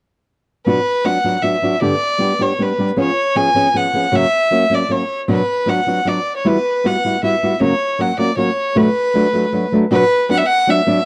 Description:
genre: mexican folk, mariachi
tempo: 156 BPM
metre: 3/4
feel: straight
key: B minor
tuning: A4 = 438 Hz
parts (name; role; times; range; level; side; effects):
- warm violin; melody; 0.7-11.1 s; B4 to G#5; -19 LUFS; equal; none
- flamenco guitar; accompaniment; 0.7-11.0 s; F#2 to G#4; -19 LUFS; equal; none
room: little or no reverb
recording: dry, close 1970s-style studio recording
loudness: -16 LUFS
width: mono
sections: 0.7-9.9 A section; 9.9-11.1 A section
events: none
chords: 0.7 Bm; 1.8 G; 3.0 C#7/E#; 4.1 F#; 5.3 Bm; 6.5 Emadd9; 7.6 F#; 8.7 Bm7; 9.9 Bm

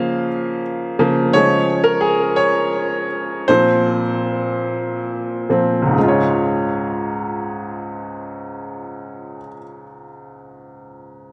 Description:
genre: pop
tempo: 44-58 BPM (dotted quarters)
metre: 6/8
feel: straight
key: Db major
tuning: A4 = 441 Hz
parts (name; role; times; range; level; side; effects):
- bright upright piano; solo; 0.0-11.3 s; Db2 to F5; -19 LUFS; equal; digital delay
room: moderate concert hall reverb, RT60 1.9 s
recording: none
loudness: -18 LUFS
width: mono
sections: 0.0-1.3 A section; 1.3-6.0 B section; 6.0-11.3 C section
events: upright piano solo 0.0-1.3, 1.3-6.0; slowing down 1.3-6.0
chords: 0.0 Db6; 1.3 Db; 3.5 Bbsus2; 6.0 Db

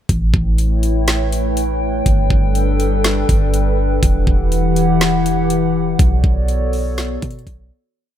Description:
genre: hip hop, atmospheric cloud-rap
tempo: 122 BPM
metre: 4/4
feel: half-time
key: B minor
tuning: A4 = 440 Hz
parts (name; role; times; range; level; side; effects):
- warbly tape-like pad; sustained chords; 0.6-7.9 s; E3 to G5; -18 LUFS; left 2 dB; chorus, built-in reverb
- warm 808-style bass; bass; 0.1-7.7 s; E1 to B2; -17 LUFS; equal; none
- trap drum kit; drums; 0.1-7.6 s; hi-hat, kick drum, snare drum; -18 LUFS; equal; none
room: little or no reverb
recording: none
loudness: -14 LUFS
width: side -10 dB against mid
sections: 0.1-8.0 verse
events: fade-out 6.0-8.0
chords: 0.1 A7; 2.1 Gadd9; 4.0 Emadd9; 6.0 Bm7

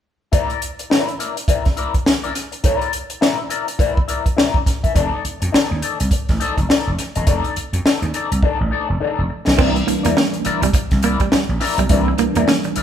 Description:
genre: funk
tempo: 104 BPM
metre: 4/4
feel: swing 60% on 16ths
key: unclear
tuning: A4 = 440 Hz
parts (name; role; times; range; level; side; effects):
- electric guitar at the edge of break-up; accompaniment; 0.3-12.8 s; Eb4 to E5; -22 LUFS; left 6 dB; wah
- compact cocktail drum kit; drums; 0.3-12.8 s; crash cymbal, hi-hat, kick drum, snare drum; -18 LUFS; equal; none
- vintage slap bass; bass; 5.0-12.8 s; E1 to F2; -22 LUFS; right 1 dB; none
- clean electric guitar; riff; 9.6-12.7 s; G3 to C4; -22 LUFS; right 7 dB; none
- tine electric piano; stabs; 9.6-12.8 s; E3 to D4; -21 LUFS; right 4 dB; overdrive, fast stereo tremolo
room: moderate large studio reverb, RT60 1.2 s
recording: band playing live in one room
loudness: -16 LUFS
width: side -9 dB against mid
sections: 0.3-9.6 A section; 9.6-12.8 B section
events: drum fill 8.4-9.6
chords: 0.3 Bb; 5.0 F6; 9.6 C9

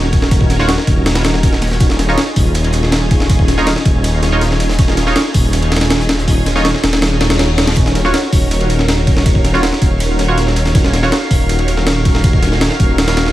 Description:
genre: drum and bass, jungle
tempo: 161 BPM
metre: 4/4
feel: straight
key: Eb minor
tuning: A4 = 440 Hz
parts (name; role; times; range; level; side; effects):
- soft string machine; sustained chords; 0.0-13.3 s; Db4 to Db5; -20 LUFS; equal; ensemble chorus, vintage 12-bit sampler grit
- dark detuned saw bass; bass; 0.0-13.3 s; Eb1; -16 LUFS; equal; none
- breakbeat sampler-style drum kit; drums; 0.1-13.3 s; hi-hat, kick drum, ride cymbal, snare drum; -14 LUFS; equal; none
- crunchy breakbeat drum kit; drums; 0.1-13.3 s; hi-hat, snare drum; -30 LUFS; left 1 dB; none
- band-passed chord stab; stabs; 0.6-11.1 s; Eb4 to Db5; -22 LUFS; right 2 dB; wide subtle chorus, dub echo
- reverse cymbal; sound effects; 7.4-7.8 s; none; -28 LUFS; left 5 dB; none
- drifting glass-harmonics texture; texture; 8.6-13.3 s; F5; -27 LUFS; right 2 dB; chorus, built-in reverb
room: digital ambience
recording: vinyl crackle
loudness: -11 LUFS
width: side -15 dB against mid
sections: 0.0-13.3 A section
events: kick drops out 7.0-7.8; reverse cymbal 7.4-7.8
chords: 0.0 Ebm7; 1.8 Dbadd9/Eb; 7.8 Ebm7

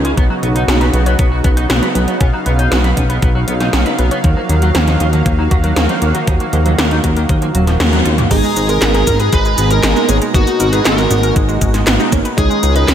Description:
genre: synthwave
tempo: 118 BPM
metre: 4/4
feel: straight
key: G# dorian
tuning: A4 = 440 Hz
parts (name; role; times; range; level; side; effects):
- soft supersaw; sustained chords; 0.0-12.9 s; B2 to A#5; -19 LUFS; right 2 dB; sidechain pumping
- analog pluck; arpeggios; 0.0-12.9 s; E#3 to D#5; -23 LUFS; left 1 dB; chorus, ping-pong delay
- clean electric guitar; riff; 0.0-8.2 s; D#3 to B4; -23 LUFS; right 1 dB; lush chorus, ping-pong delay
- chorused synth bass; bass; 0.0-12.9 s; D#1 to D#2; -15 LUFS; equal; sidechain pumping
- 80s electronic pad drums; drums; 0.0-12.9 s; cabasa, crash cymbal, handclaps, hi-hat, snare drum, toms; -18 LUFS; equal; gated reverb on snare and toms, gated reverb
- electronic kick drum; drums; 0.2-12.5 s; none; -15 LUFS; equal; overdrive
- bluesy overdriven lead guitar; melody; 8.3-12.9 s; F#4 to B4; -18 LUFS; right 1 dB; distortion, tape echo
- FM electric piano with soft pad layer; stabs; 8.3-12.9 s; G#3 to A#5; -21 LUFS; right 3 dB; chorus, tremolo
room: light reverb, digital ambience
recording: none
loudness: -11 LUFS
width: side -9 dB against mid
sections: 0.0-8.3 A section; 8.3-12.9 B section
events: drum fill 7.8-8.3; band accent 7.8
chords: 0.2 Badd9; 4.2 D#madd9; 8.3 G#madd9; 12.4 C#sus2

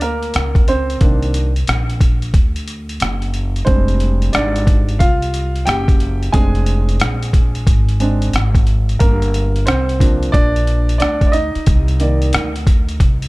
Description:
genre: hip hop, jazz-hop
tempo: 90 BPM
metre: 4/4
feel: swing 65% on 16ths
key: F dorian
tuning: A4 = 441 Hz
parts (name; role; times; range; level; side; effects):
- warm grand piano; accompaniment; 0.0-13.3 s; Eb3 to Ab5; -20 LUFS; right 2 dB; none
- upright bass; bass; 0.0-13.3 s; F1 to D2; -17 LUFS; equal; none
- trip hop sampler-style drum kit; drums; 0.0-13.3 s; hi-hat, kick drum, rim click; -16 LUFS; equal; none
room: small room ambience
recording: dark, warm production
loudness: -13 LUFS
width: side -22 dB against mid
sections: 0.0-13.3 A section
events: grand piano solo 0.0-13.3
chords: 0.0 Gm (rootless); 1.0 Cm7; 3.7 Fm69; 6.3 Bb9/F; 9.0 Gm7; 11.7 Cm7

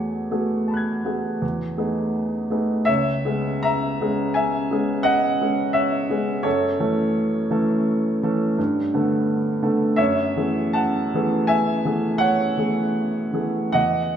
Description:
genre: classical, impressionist solo piano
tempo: 71-88 BPM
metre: 5/4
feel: rubato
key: unclear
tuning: A4 = 442 Hz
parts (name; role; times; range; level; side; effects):
- clear baby grand piano; solo; 0.0-14.2 s; C#2 to G#6; -19 LUFS; equal; none
room: wet recital hall reverb, RT60 1.6 s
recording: nothing above 10.8 kHz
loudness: -19 LUFS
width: side -9 dB against mid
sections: 0.0-14.2 A section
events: none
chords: 0.0 F#m11/E; 1.4 B13/E; 2.9 C#m7; 6.5 F#m7; 8.6 Gadd9; 10.0 F#m11

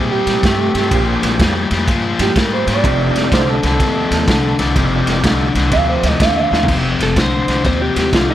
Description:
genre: electric blues shuffle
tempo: 125 BPM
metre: 4/4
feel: swing 65% on 8ths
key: F mixolydian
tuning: A4 = 436 Hz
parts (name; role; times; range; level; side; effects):
- electric guitar through a small old amp; second line; 0.0-6.7 s; G4 to F5; -19 LUFS; right 5 dB; none
- biting overdriven guitar; riff; 0.0-8.3 s; F2 to A3; -18 LUFS; left 5 dB; none
- upright bass; bass; 0.0-8.3 s; F1 to Bb2; -20 LUFS; equal; none
- raw garage drum kit; drums; 0.3-8.3 s; crash cymbal, kick drum, ride cymbal, snare drum, toms; -17 LUFS; equal; none
- overdriven tonewheel organ; accompaniment; 0.9-8.3 s; A3 to Ab4; -25 LUFS; right 5 dB; slow rotary speaker, chorus vibrato
- lightly driven lead guitar; melody; 7.0-8.3 s; F4 to C5; -19 LUFS; equal; none
room: light reverb, studio ambience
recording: none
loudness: -12 LUFS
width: side -12 dB against mid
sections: 0.0-6.7 A section; 6.7-8.3 A section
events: clean electric guitar solo 0.0-6.7; drum fill 6.4; lead electric guitar solo 6.7-8.3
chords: 0.0 C7(no3); 0.9 Bb13; 2.8 F13

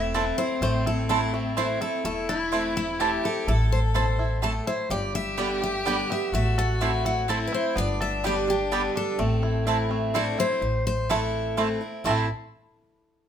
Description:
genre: bluegrass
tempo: 126 BPM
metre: 3/4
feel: straight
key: A dorian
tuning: A4 = 440 Hz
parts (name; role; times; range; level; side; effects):
- bluegrass banjo; melody; 0.0-12.3 s; A3 to A4; -32 LUFS; right 1 dB; none
- picked steel-string acoustic guitar; melody; 0.0-12.3 s; E4 to F#5; -29 LUFS; left 3 dB; none
- clear fiddle; second line; 0.0-10.6 s; C4 to A4; -31 LUFS; left 4 dB; none
- picked steel-string acoustic guitar; accompaniment; 0.0-12.2 s; E2 to G4; -31 LUFS; right 2 dB; none
- upright bass; bass; 0.0-12.3 s; E1 to A1; -28 LUFS; equal; none
- mandolin; stabs; 0.1-12.2 s; B3 to A5; -28 LUFS; right 8 dB; none
room: moderate studio reverb, RT60 0.8 s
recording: minimal, uncompressed stereo recording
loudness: -23 LUFS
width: side -9 dB against mid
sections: 0.0-10.6 A section; 10.6-12.1 B section; 12.1-13.3 C section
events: none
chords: 0.0 Am; 4.9 G; 6.3 Am; 7.8 G; 9.2 Am

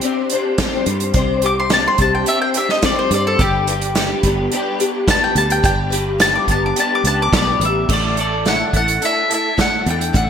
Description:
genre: folk rock and heartland rock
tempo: 107 BPM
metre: 4/4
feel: straight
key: unclear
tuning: A4 = 440 Hz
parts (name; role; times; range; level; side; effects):
- mandolin; melody; 0.0-10.3 s; G4 to D6; -18 LUFS; left 1 dB; ping-pong delay
- picked twelve-string acoustic guitar; accompaniment; 0.0-10.3 s; A2 to C5; -22 LUFS; left 4 dB; ensemble chorus
- electric guitar through a small old amp; riff; 0.0-10.3 s; G2 to A4; -24 LUFS; right 1 dB; ensemble chorus
- unplugged drum kit; drums; 0.0-10.3 s; crash cymbal, hi-hat, kick drum, snare drum; -20 LUFS; right 2 dB; gated reverb
- fingered electric bass; bass; 0.9-10.3 s; G1 to G2; -21 LUFS; right 1 dB; none
room: moderate plate reverb, RT60 1.4 s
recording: bright 1980s-style digital production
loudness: -14 LUFS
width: side -8 dB against mid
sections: 0.0-7.9 A section; 7.9-10.3 B section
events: mandolin solo 0.0-7.9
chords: 0.0 Csus2; 3.4 G; 7.9 Asus4

